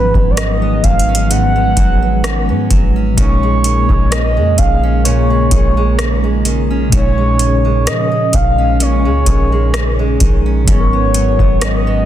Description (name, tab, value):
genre	contemporary R&B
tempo	64 BPM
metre	4/4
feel	swing 54% on 16ths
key	Bb phrygian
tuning	A4 = 440 Hz
part	mellow horn-like synth lead	melody	0.0-12.1 s	Cb5 to Gb5	-18 LUFS	right 1 dB	chorus, phaser
part	mellow tine electric piano	accompaniment	0.0-12.1 s	Ab2 to Db5	-21 LUFS	left 1 dB	medium stereo tremolo
part	warm analog pad	sustained chords	0.0-12.1 s	Db3 to Db4	-20 LUFS	right 2 dB	chorus
part	fingerpicked steel-string acoustic guitar	arpeggios	0.0-12.1 s	Ab2 to Db4	-22 LUFS	right 2 dB	ping-pong delay
part	soft 808-style bass	bass	0.0-12.1 s	Ab1 to F3	-16 LUFS	equal	none
part	booming analog drum machine	drums	0.1-11.9 s	hi-hat, kick drum, rim click	-15 LUFS	equal	soft clipping on snare
room	little or no reverb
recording	dense, heavily limited modern master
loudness	-11 LUFS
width	side -11 dB against mid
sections	0.0-12.1 A section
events	none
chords	0.0 Abm11; 3.2 Bbm7; 10.7 Abm11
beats	0.36 1.30 2.24 | 3.18 4.11 5.05 5.99 | 6.93 7.86 8.80 9.74 | 10.68 11.61